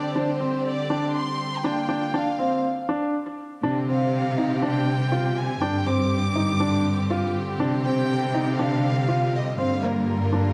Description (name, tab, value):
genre	piano and strings electronica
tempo	121 BPM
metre	4/4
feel	straight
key	unclear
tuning	A4 = 440 Hz
part	dark chamber violin section	melody	0.0-10.5 s	Bb4 to D6	-32 LUFS	equal	tape echo
part	clear symphonic string section	sustained chords	0.0-10.5 s	D3 to G4	-33 LUFS	equal	none
part	warm grand piano	riff	0.0-10.5 s	Bb3 to F4	-28 LUFS	equal	tape echo
part	rich studio cello section	bass	3.6-10.5 s	G2 to C3	-27 LUFS	equal	none
room	moderate echo chamber reverb, RT60 2.3 s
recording	dark, warm production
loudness	-24 LUFS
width	mono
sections	0.0-3.6 A section; 3.6-10.5 B section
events	build-up 0.0-3.6; filter sweep on violin section 0.0-3.6; break 2.6-3.6; drop 3.6-10.5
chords	0.0 Csus2; 1.6 Gm7; 3.6 Csus2; 5.6 Gsus4; 7.6 Csus2; 9.6 Gm7